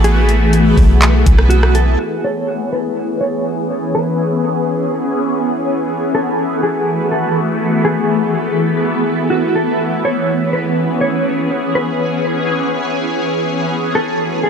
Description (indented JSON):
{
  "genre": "hip hop, atmospheric cloud-rap",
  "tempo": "123 BPM",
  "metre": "4/4",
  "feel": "half-time",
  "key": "C# minor",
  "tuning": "A4 = 440 Hz",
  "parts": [
    { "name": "mellow electric guitar", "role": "melody", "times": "0.0-14.5 s", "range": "F#4 to C#5", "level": "-20 LUFS", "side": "equal", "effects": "tremolo, low-pass filter, dub echo" },
    { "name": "shimmering ambient pad", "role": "sustained chords", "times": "0.0-14.5 s", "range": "E3 to G#4", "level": "-16 LUFS", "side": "left 1 dB", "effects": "chorus, built-in reverb, phaser, sidechain pumping, low-pass filter" },
    { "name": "soft 808-style bass", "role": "bass", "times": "0.0-2.0 s", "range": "A1 to B1", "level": "-12 LUFS", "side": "equal", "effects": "none" },
    { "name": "trap drum kit", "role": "drums", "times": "0.0-1.9 s", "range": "handclaps, hi-hat, kick drum, rim click", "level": "-14 LUFS", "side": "equal", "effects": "none" }
  ],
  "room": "light reverb",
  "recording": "echo-heavy mix",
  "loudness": "-13 LUFS",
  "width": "side -7 dB against mid",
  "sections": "0.0-2.0 A section; 2.0-14.5 B section",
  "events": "filter sweep 2.0-14.5",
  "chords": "0.0 B7sus4; 2.0 C#m7; 5.9 B7sus4; 9.8 C#m7; 13.7 B7sus4"
}